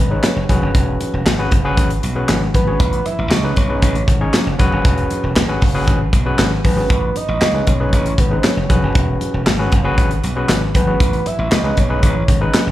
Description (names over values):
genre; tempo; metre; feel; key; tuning
early-eighties boogie funk; 117 BPM; 4/4; straight; E major; A4 = 440 Hz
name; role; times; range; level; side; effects
soft octave-layered synth lead; melody; 0.0-12.7 s; B4 to E5; -23 LUFS; right 2 dB; chorus, slapback echo, tape echo
slap bass; bass; 0.0-12.7 s; E1 to C#2; -19 LUFS; equal; none
overdriven tine electric piano; accompaniment; 0.1-12.7 s; C#4 to C#5; -22 LUFS; left 1 dB; slapback echo
modern studio drum kit; drums; 0.2-12.7 s; handclaps, hi-hat, kick drum, snare drum; -16 LUFS; equal; none
congas; percussion; 0.2-12.7 s; none; -26 LUFS; right 1 dB; none
room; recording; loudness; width
studio reverb; live gig heard through the venue's PA, club reverb; -14 LUFS; side -14 dB against mid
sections
0.0-12.7 A section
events
none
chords
0.5 E6; 2.8 Amaj9#11; 4.6 E6; 6.9 Amaj9#11; 8.7 E6; 11.0 Amaj9#11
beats
0.23 | 0.75 1.26 1.77 2.29 | 2.80 3.31 3.83 4.34 | 4.85 5.36 5.88 6.39 | 6.90 7.42 7.93 8.44 | 8.95 9.47 9.98 10.49 | 11.00 11.52 12.03 12.54